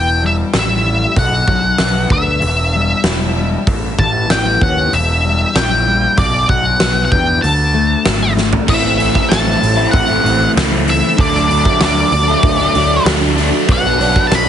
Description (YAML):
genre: quiet-loud alternative rock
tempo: 96 BPM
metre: 4/4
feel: straight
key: E minor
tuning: A4 = 440 Hz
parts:
  - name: octave-fuzz lead guitar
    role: melody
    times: 0.0-14.5 s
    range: D5 to B5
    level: -16 LUFS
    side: equal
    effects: distortion, digital delay
  - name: fingerpicked steel-string acoustic guitar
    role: arpeggios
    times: 0.0-8.7 s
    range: E2 to E4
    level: -21 LUFS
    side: left 8 dB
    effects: digital delay
  - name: fuzz picked electric bass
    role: bass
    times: 0.0-14.5 s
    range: E1 to E2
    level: -18 LUFS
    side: right 1 dB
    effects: overdrive
  - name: huge arena drum kit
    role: drums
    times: 0.5-14.5 s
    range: crash cymbal, hi-hat, kick drum, snare drum, toms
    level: -17 LUFS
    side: equal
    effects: none
  - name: string machine, cellos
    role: sustained chords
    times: 8.7-14.5 s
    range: E4 to B5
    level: -24 LUFS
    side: right 1 dB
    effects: ensemble chorus
  - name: crunchy overdriven guitar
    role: riff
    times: 8.7-14.5 s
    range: A2 to E4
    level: -16 LUFS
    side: equal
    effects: phaser
room: light reverb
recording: heavily compressed radio sound, multiband compression, nothing above 10.9 kHz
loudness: -11 LUFS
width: side -9 dB against mid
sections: 0.0-8.7 A section; 8.7-14.5 B section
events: drum fill 8.4-8.7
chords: 0.0 Em; 1.2 Bm; 2.4 Em; 3.7 Aadd9; 4.9 Em; 6.2 Bm; 7.4 Dsus2; 8.7 Am; 11.2 D; 13.7 Bm